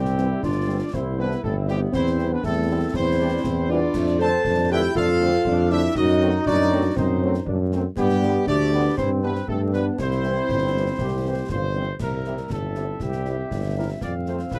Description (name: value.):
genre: military-style march for wind band.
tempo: 119 BPM.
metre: 2/4.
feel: straight.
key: C major.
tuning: A4 = 440 Hz.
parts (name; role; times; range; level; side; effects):
dark trumpet section; melody; 0.0-14.6 s; G4 to A5; -31 LUFS; equal; none.
dark euphonium; second line; 0.0-11.7 s; G3 to A4; -27 LUFS; equal; none.
mellow woodwind section; second line; 0.0-14.6 s; B3 to F5; -32 LUFS; equal; none.
dark trombone section; sustained chords; 0.0-14.6 s; F3 to G4; -34 LUFS; equal; none.
warm tuba; bass; 0.0-14.6 s; G1 to G2; -27 LUFS; equal; none.
concert snare drum, concert bass drum and clash cymbals; drums; 0.1-14.6 s; none; -36 LUFS; equal; none.
dark French horn section; accompaniment; 0.2-14.4 s; D3 to F4; -32 LUFS; equal; none.
room: little or no reverb.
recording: close, detailed microphones, vinyl crackle.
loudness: -22 LUFS.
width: mono.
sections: 0.0-12.0 A section; 12.0-14.6 B section.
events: none.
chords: 0.0 C; 1.9 C/E; 4.0 Dm/F; 6.0 F#dim7; 8.0 G; 9.0 C/G; 9.5 G7; 10.0 C; 12.0 C7; 14.0 F.